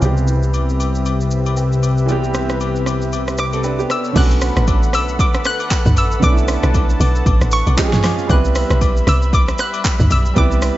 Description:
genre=amapiano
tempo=116 BPM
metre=4/4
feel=swing 58% on 16ths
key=B minor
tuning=A4 = 440 Hz
part: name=clear grand piano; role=accompaniment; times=0.0-10.8 s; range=D3 to B4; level=-23 LUFS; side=right 4 dB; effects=low-pass filter
part: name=warm analog pad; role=sustained chords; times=0.0-10.8 s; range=C3 to B5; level=-23 LUFS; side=left 3 dB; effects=chorus, sidechain pumping, low-pass filter
part: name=fat analog bass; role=bass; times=0.0-3.9 s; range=C2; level=-19 LUFS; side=equal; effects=none
part: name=deep house drum kit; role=drums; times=0.0-10.8 s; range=crash cymbal, handclaps, hi-hat, kick drum, rim click, shaker, snare drum, toms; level=-18 LUFS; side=equal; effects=overdrive
part: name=agogo bells and woodblock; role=percussion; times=0.0-10.5 s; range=none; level=-29 LUFS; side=left 7 dB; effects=none
part: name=hollow square pluck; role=melody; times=3.4-10.8 s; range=C#6 to F#6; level=-23 LUFS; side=equal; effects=chorus, low-pass filter, tape echo
part: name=deep log drum bass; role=bass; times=4.2-10.7 s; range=A1 to D2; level=-16 LUFS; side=equal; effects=none
room=light reverb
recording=nothing above 7.8 kHz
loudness=-14 LUFS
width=side -15 dB against mid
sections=0.0-4.2 A section; 4.2-10.8 B section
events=filter sweep 0.0-4.2; drop 4.2-10.8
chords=0.0 Cmaj7; 3.9 Bm9; 7.8 C#maj7; 8.3 Cmaj7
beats=| 0.02 0.54 1.05 1.57 | 2.09 2.61 3.12 3.64 | 4.16 4.67 5.19 5.71 | 6.23 6.74 7.26 7.78 | 8.29 8.81 9.33 9.85 | 10.36

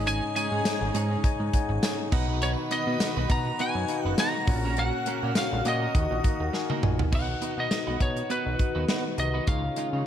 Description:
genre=1980s-style pop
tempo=102 BPM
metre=4/4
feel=swing 55% on 16ths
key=unclear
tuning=A4 = 442 Hz
part: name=lightly driven lead guitar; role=melody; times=0.0-10.1 s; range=B4 to Bb5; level=-31 LUFS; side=equal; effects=digital delay
part: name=shimmering bell with halo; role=second line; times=0.0-6.5 s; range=Db6 to Bb6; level=-40 LUFS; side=equal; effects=ensemble chorus, phaser, digital delay
part: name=bell-like tine electric piano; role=accompaniment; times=0.0-10.1 s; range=Ab2 to Bb5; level=-32 LUFS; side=left 5 dB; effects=none
part: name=warm studio string section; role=sustained chords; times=0.0-10.1 s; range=Db3 to F#4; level=-36 LUFS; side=left 2 dB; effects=none
part: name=twelve-string electric guitar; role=riff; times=0.0-10.0 s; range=Ab3 to Db5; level=-36 LUFS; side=right 8 dB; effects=lush chorus, digital delay
part: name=warm horn section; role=stabs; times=0.0-6.8 s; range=Bb3 to B4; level=-38 LUFS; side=right 3 dB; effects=none
part: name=fat analog bass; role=bass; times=0.0-10.0 s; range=F#1 to Db3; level=-29 LUFS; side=equal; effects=none
part: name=modern studio drum kit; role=drums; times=0.1-9.9 s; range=crash cymbal, hi-hat, kick drum, snare drum, tambourine, toms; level=-28 LUFS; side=equal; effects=gated reverb
room=small room ambience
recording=none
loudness=-24 LUFS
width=side -10 dB against mid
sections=0.0-7.1 A section; 7.1-10.1 B section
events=tine electric piano fill 1.2-2.4; drum fill 6.5-7.1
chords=0.0 Absus4; 2.1 B; 4.5 Gb/Bb; 5.9 Ebm; 7.1 B; 9.5 Dbadd9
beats=| 0.07 0.65 1.24 1.83 | 2.42 3.01 3.60 4.18 | 4.77 5.36 5.95 6.54 | 7.12 7.71 8.30 8.89 | 9.48 10.07

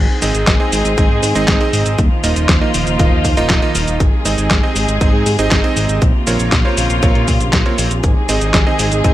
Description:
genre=italo disco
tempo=119 BPM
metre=4/4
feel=straight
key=unclear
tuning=A4 = 439 Hz
part: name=dark studio string section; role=sustained chords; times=0.0-9.1 s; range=C3 to Ab4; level=-20 LUFS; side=left 1 dB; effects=none
part: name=fat analog bass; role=bass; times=0.0-9.1 s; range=Eb1 to Bb2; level=-18 LUFS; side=equal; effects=none
part: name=bright electric grand piano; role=stabs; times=0.2-9.1 s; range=Bb3 to Eb5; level=-20 LUFS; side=right 4 dB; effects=ping-pong delay
part: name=clean 12-bit digital drum machine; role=drums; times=0.2-9.1 s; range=cabasa, handclaps, hi-hat, snare drum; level=-18 LUFS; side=equal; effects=none
part: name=electronic kick drum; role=drums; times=0.5-9.1 s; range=none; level=-15 LUFS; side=equal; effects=overdrive
room=light reverb, digital ambience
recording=none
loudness=-12 LUFS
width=side -14 dB against mid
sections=0.0-9.1 A section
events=none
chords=0.0 Ab; 2.0 Ebsus2; 4.0 Ab; 6.0 Bbmadd9; 8.0 Ab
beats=0.47 0.98 1.48 | 1.99 2.49 2.99 3.50 | 4.00 4.51 5.01 5.51 | 6.02 6.52 7.03 7.53 | 8.04 8.54 9.04

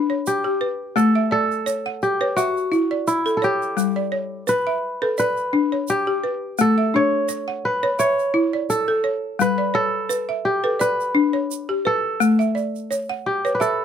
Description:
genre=west african traditional, West African string and xylophone music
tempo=85 BPM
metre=4/4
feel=swing 54% on 16ths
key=G lydian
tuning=A4 = 440 Hz
part: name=kora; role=melody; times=0.0-13.8 s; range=E4 to C#5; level=-22 LUFS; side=equal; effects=none
part: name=balafon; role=arpeggios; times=0.0-13.8 s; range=G3 to F#5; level=-21 LUFS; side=left 1 dB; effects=none
part: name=tube shaker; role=percussion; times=0.3-13.8 s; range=none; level=-34 LUFS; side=right 9 dB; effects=none
room=light reverb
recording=none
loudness=-19 LUFS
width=side -8 dB against mid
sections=0.0-13.8 A section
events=none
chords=0.0 G; 1.0 A; 3.8 G; 6.6 A; 9.4 G; 12.2 A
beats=0.26 | 0.96 1.67 2.37 3.07 | 3.77 4.48 5.18 5.88 | 6.58 7.29 7.99 8.69 | 9.40 10.10 10.80 11.51 | 12.21 12.91 13.62

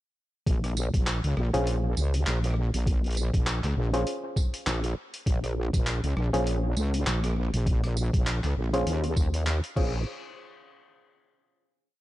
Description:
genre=glitch hop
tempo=100 BPM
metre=4/4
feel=swing 57% on 16ths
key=Bb minor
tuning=A4 = 440 Hz
part: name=wobble bass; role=bass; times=0.5-10.0 s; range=Bb1 to Eb2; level=-26 LUFS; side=equal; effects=chorus, tube saturation
part: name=boom bap sampler-style drum kit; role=drums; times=0.5-9.9 s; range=crash cymbal, handclaps, hi-hat, rim click, tambourine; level=-34 LUFS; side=equal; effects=overdrive, small room ambience
part: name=electronic kick drum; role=drums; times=0.5-9.9 s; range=none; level=-25 LUFS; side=equal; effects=overdrive, small room ambience
part: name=muted clav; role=stabs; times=1.5-10.0 s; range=Db4 to C5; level=-31 LUFS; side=equal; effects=vintage 12-bit sampler grit, sidechain pumping, tape echo
room=little or no reverb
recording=nothing above 11.0 kHz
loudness=-25 LUFS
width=side -16 dB against mid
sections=0.5-10.1 drop; 10.1-12.0 final hit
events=drop 0.5-10.1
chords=0.5 Bbm7; 10.1 N.C.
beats=| 0.47 1.07 1.67 2.27 | 2.87 3.47 4.07 4.67 | 5.27 5.87 6.47 7.07 | 7.67 8.27 8.87 9.47

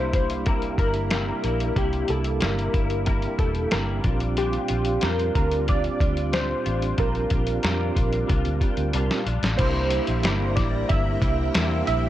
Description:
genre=indie pop, bedroom pop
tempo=92 BPM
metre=4/4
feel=straight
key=unclear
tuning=A4 = 438 Hz
part: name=warm analog keys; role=melody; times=0.0-12.1 s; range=G4 to E5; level=-28 LUFS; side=equal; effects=analog chorus, slapback echo
part: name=mellow tonewheel organ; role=accompaniment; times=0.0-12.1 s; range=Bb3 to G4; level=-30 LUFS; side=right 5 dB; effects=fast rotary speaker
part: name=semi-hollow electric guitar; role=accompaniment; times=0.0-12.1 s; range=Bb2 to F4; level=-32 LUFS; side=left 4 dB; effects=ensemble chorus, vibrato effect
part: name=vintage muted fingered electric bass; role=bass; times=0.0-12.1 s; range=E1 to F2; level=-26 LUFS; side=equal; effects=none
part: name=lo-fi sampler-style drum kit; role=drums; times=0.1-12.0 s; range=crash cymbal, hi-hat, kick drum, snare drum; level=-25 LUFS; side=equal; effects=vintage 12-bit sampler grit
part: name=string machine, full ensemble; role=sustained chords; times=9.6-12.1 s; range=E4 to Bb5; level=-35 LUFS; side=left 1 dB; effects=ensemble chorus
room=light reverb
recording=dark, warm production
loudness=-21 LUFS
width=side -13 dB against mid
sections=0.0-9.6 A section; 9.6-12.1 B section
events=drum fill 8.9-9.6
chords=0.0 C7; 4.1 Bb6; 9.6 C7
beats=0.46 1.11 | 1.77 2.42 3.07 3.73 | 4.38 5.03 5.68 6.33 | 6.99 7.64 8.29 8.94 | 9.59 10.25 10.90 11.55

